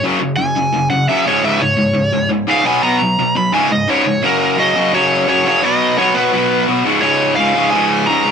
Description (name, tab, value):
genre	punk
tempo	172 BPM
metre	4/4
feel	straight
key	unclear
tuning	A4 = 440 Hz
part	cranked stack guitar	melody	0.0-8.3 s	Bb4 to Cb6	-16 LUFS	right 1 dB	overdrive, tape echo
part	distorted electric guitar	riff	0.0-8.3 s	Db2 to Cb4	-14 LUFS	left 1 dB	overdrive
room	light reverb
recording	none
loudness	-12 LUFS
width	side -6 dB against mid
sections	0.0-4.2 A section; 4.2-8.3 B section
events	overdriven electric guitar solo 0.0-4.2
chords	0.0 Gb5; 1.3 Db5; 2.7 Cb5; 3.5 Db5; 4.2 Gb; 5.6 Cb; 6.8 Db